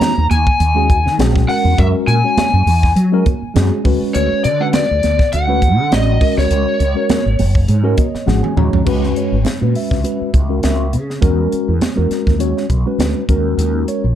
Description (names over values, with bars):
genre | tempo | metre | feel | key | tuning
electric jazz fusion | 102 BPM | 4/4 | swing 55% on 16ths | C# dorian | A4 = 440 Hz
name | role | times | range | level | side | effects
lead guitar through a small cranked amp | melody | 0.0-8.2 s | C#5 to A#5 | -18 LUFS | left 1 dB | overdrive
mellow tine electric piano | accompaniment | 0.0-14.2 s | G#3 to A#5 | -19 LUFS | left 1 dB | medium stereo tremolo
mellow fretless electric bass | bass | 0.0-14.2 s | F#1 to F#3 | -16 LUFS | equal | ensemble chorus
crisp fusion drum kit | drums | 0.0-14.0 s | crash cymbal, hi-hat, kick drum, snare drum, toms | -18 LUFS | equal | none
congas | percussion | 0.0-14.0 s | none | -22 LUFS | right 7 dB | none
room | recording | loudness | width
light reverb | dark, warm production | -12 LUFS | side -10 dB against mid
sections
0.0-8.9 A section; 8.9-14.2 B section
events
tine electric piano fill 7.7-8.9; drum fill 8.3-8.9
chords
0.0 D#m7; 1.8 F#7; 3.8 Dmaj7; 6.2 G#9sus4; 8.9 C#m7; 11.2 Emaj9; 13.3 D#m7